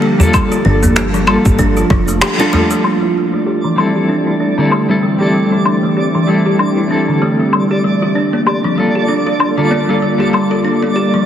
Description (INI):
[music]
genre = organic downtempo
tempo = 96 BPM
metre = 4/4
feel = swing 57% on 16ths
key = unclear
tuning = A4 = 441 Hz
[part]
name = mellow electric guitar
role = accompaniment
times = 0.0-11.3 s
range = G3 to A4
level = -17 LUFS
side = left 2 dB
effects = tremolo, sidechain pumping, tape echo
[part]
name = ethereal airy pad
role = sustained chords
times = 0.0-11.3 s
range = E3 to A4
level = -18 LUFS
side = right 1 dB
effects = ensemble chorus, built-in reverb, vintage 12-bit sampler grit, sidechain pumping
[part]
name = kalimba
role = arpeggios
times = 0.0-11.3 s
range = D3 to G4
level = -16 LUFS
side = equal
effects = low-pass filter, tape echo
[part]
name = electronic cabasa, woodblock and finger snaps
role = drums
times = 0.2-10.5 s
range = none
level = -18 LUFS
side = left 2 dB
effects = low-pass filter on perc, low-pass filter on snare, low-pass filter on room
[part]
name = udu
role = percussion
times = 0.2-2.7 s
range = none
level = -16 LUFS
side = equal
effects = none
[part]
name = electronic kick drum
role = drums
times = 0.3-2.0 s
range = none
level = -14 LUFS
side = equal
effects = overdrive
[part]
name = woody FM bass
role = bass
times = 0.7-2.2 s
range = F1 to G1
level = -16 LUFS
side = equal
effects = sidechain pumping
[part]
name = twinkling granular texture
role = texture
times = 3.4-11.3 s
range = D5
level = -23 LUFS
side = right 3 dB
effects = built-in reverb
[sound]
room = moderate lush hall reverb, RT60 2.8 s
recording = heavily compressed radio sound, multiband compression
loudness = -11 LUFS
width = side -10 dB against mid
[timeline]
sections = 0.0-2.8 A section; 2.8-11.3 B section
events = kick drops out 2.2-2.8; band accent 2.2-2.5; filter sweep on kalimba 2.8-11.3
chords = 0.0 Gm9; 2.8 Am7; 7.8 Gm9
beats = | 0.34 0.96 1.59 2.21 | 2.84 3.46 4.09 4.71 | 5.34 5.96 6.59 7.21 | 7.84 8.46 9.09 9.71 | 10.34 10.96